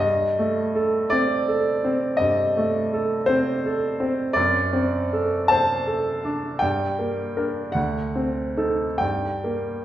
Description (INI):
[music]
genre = classical, romantic nocturne for solo piano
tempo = 45-57 BPM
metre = 4/4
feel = rubato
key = unclear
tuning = A4 = 440 Hz
[part]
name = clear upright piano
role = solo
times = 0.0-9.8 s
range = D2 to A5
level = -20 LUFS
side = equal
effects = none
[sound]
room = wet recital hall reverb, RT60 1.5 s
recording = heard from further back in the room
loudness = -20 LUFS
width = side -12 dB against mid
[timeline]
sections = 0.0-9.8 A section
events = none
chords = 0.0 Am7b5/G; 4.4 D7/F#; 6.6 Gm; 7.8 D7b9; 9.0 Gm